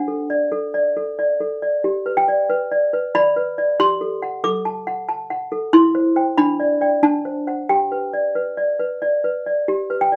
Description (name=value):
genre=classical, lullaby for toy piano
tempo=92 BPM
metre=3/4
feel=straight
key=G major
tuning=A4 = 440 Hz
part: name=toy piano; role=solo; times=0.0-10.2 s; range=D4 to D6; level=-20 LUFS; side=equal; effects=none
room=moderate studio reverb, RT60 0.5 s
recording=close, detailed microphones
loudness=-20 LUFS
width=mono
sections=0.0-9.7 A section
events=none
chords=0.0 D; 1.8 G; 3.8 D/G; 5.7 C/E; 6.4 G/D; 7.0 D7; 7.7 G